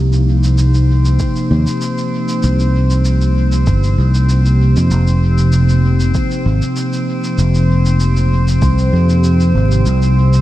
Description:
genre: ambient dub.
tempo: 97 BPM.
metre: 4/4.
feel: swing 53% on 16ths.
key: unclear.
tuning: A4 = 436 Hz.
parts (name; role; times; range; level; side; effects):
warbly tape-like pad; sustained chords; 0.0-10.4 s; C3 to G4; -18 LUFS; equal; chorus, built-in reverb.
fingered electric bass; bass; 0.0-10.4 s; F1 to F2; -12 LUFS; equal; none.
drifting glass-harmonics texture; texture; 0.5-10.4 s; C4 to C5; -22 LUFS; left 2 dB; chorus, built-in reverb.
cabasa; drums; 0.1-10.4 s; none; -30 LUFS; equal; dub echo.
electronic kick drum; drums; 1.2-8.8 s; none; -19 LUFS; equal; none.
room: moderate huge ambient reverb, RT60 6.5 s.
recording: dreamy mix soaked in reverb, vinyl crackle.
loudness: -11 LUFS.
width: side -15 dB against mid.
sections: 0.0-10.4 A section.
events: none.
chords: 0.0 Cm7; 4.9 F7(no3); 9.9 N.C..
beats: 0.58 1.20 1.82 | 2.44 3.06 3.67 4.29 | 4.91 5.53 6.15 6.77 | 7.38 8.00 8.62 9.24 | 9.86.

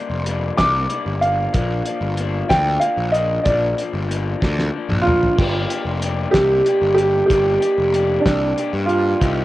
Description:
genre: indie rock.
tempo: 63 BPM (dotted quarters).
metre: 6/8.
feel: straight.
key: unclear.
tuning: A4 = 441 Hz.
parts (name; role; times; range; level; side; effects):
warm upright piano; melody; 0.0-9.4 s; D4 to D6; -18 LUFS; right 1 dB; tape echo.
electric guitar through a small old amp; riff; 0.0-9.4 s; F3 to G4; -26 LUFS; left 6 dB; cassette tape.
fuzz picked electric bass; bass; 0.1-9.4 s; F1 to G2; -22 LUFS; equal; overdrive.
cloth-damped thuddy drum kit; drums; 0.3-9.4 s; crash cymbal, hi-hat, kick drum, snare drum, toms; -22 LUFS; equal; cassette tape.
room: moderate booth ambience, RT60 0.2 s.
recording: home recording on cassette.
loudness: -16 LUFS.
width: side -16 dB against mid.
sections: 0.0-5.4 A section; 5.4-9.4 A section.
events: drum fill 4.4-5.4.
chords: 0.0 Gm; 1.5 Bb; 5.4 Gm.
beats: 0.58 | 1.54 2.50 | 3.46 4.42 | 5.38 6.34 | 7.29 8.25 | 9.21.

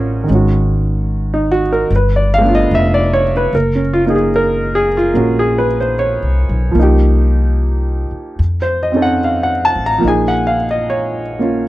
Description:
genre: jazz ballad.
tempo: 74 BPM.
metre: 4/4.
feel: swing 66% on 8ths.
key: unclear.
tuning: A4 = 436 Hz.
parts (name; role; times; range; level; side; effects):
warm concert grand piano; accompaniment; 0.0-11.7 s; Eb3 to Bb5; -14 LUFS; right 1 dB; none.
upright bass; bass; 0.0-11.6 s; F1 to F2; -16 LUFS; equal; none.
room: little or no reverb.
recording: dry, close 1970s-style studio recording.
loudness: -12 LUFS.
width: side -16 dB against mid.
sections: 0.0-11.7 A section.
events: none.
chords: 0.3 Ab5; 1.9 G9; 3.5 Gbmaj9#11; 6.8 Cm7; 8.4 F7b13; 10.0 Bbm7.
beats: | 0.27 1.09 1.90 2.71 | 3.52 4.33 5.14 5.95 | 6.76 7.58 8.39 9.21 | 10.03 10.86 11.67.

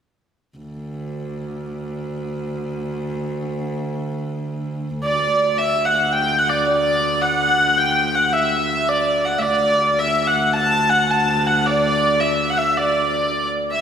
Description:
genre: medieval.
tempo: 108 BPM (dotted quarters).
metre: 6/8.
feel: straight.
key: D major.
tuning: A4 = 439 Hz.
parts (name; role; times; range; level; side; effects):
clear viola da gamba; drone; 0.6-13.8 s; D2; -25 LUFS; equal; none.
rich hurdy-gurdy; melody; 5.0-13.8 s; D5 to A5; -16 LUFS; equal; none.
room: wet concert hall reverb, RT60 2.2 s.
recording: recorded in a church or concert hall.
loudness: -17 LUFS.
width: side -8 dB against mid.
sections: 0.6-5.0 A section; 5.0-13.8 B section.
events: none.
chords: none.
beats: | 0.58 1.13 | 1.69 2.24 | 2.80 3.35 | 3.91 4.46 | 5.02 5.57 | 6.13 6.68 | 7.24 7.79 | 8.35 8.90 | 9.46 10.01 | 10.57 11.12 | 11.68 12.23 | 12.79 13.34.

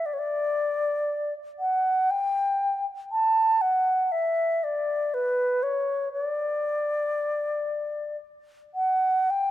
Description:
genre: celtic folk.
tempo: 59 BPM.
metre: 3/4.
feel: rubato.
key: D major.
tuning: A4 = 443 Hz.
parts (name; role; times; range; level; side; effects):
baroque flute; solo; 0.0-9.5 s; B4 to A5; -23 LUFS; equal; none.
room: moderate lush hall reverb, RT60 2.9 s.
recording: rough home demo mix.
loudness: -23 LUFS.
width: side -13 dB against mid.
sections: 0.0-9.3 A section.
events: none.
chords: none.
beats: | 0.07 1.09 2.10 | 3.10 4.11 5.12 | 6.12 7.13 8.20 | 9.31.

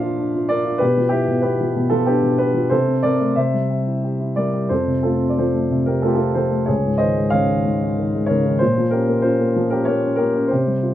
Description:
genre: classical, lyrical solo piano.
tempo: 93 BPM.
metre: 3/4.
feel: rubato.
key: unclear.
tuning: A4 = 442 Hz.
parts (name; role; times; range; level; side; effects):
dark baby grand piano; solo; 0.0-10.9 s; Db2 to F5; -16 LUFS; equal; none.
room: light reverb.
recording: close, detailed microphones.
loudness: -16 LUFS.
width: side -12 dB against mid.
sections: 0.0-10.9 A section.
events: none.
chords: 0.0 Bb; 0.8 G7/B; 2.7 Bbmaj9/C; 3.4 C; 4.7 F; 6.7 Dbsus2; 8.6 Bbm.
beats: 0.18 | 0.81 1.44 2.07 | 2.72 3.38 4.04 | 4.71 5.38 6.04 | 6.69 7.33 7.97 | 8.62 9.25 9.88 | 10.51.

